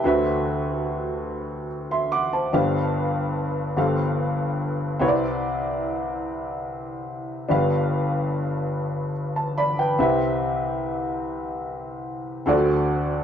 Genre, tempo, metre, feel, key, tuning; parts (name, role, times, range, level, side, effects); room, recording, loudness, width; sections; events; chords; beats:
gospel; 48 BPM (dotted quarters); 6/8; straight; C major; A4 = 440 Hz
warm upright piano; solo; 0.0-13.2 s; G1 to D6; -22 LUFS; equal
moderate studio reverb, RT60 0.6 s; band playing live in one room; -22 LUFS; side -8 dB against mid
0.0-7.5 A section; 7.5-13.2 B section
0.0 D13; 2.5 G7sus4; 3.8 G9sus4; 5.0 Cmaj9; 7.5 G7; 10.0 Cmaj7; 12.5 D7
| 0.03 1.27 | 2.52 3.77 | 5.01 6.26 | 7.50 8.74 | 9.98 11.23 | 12.47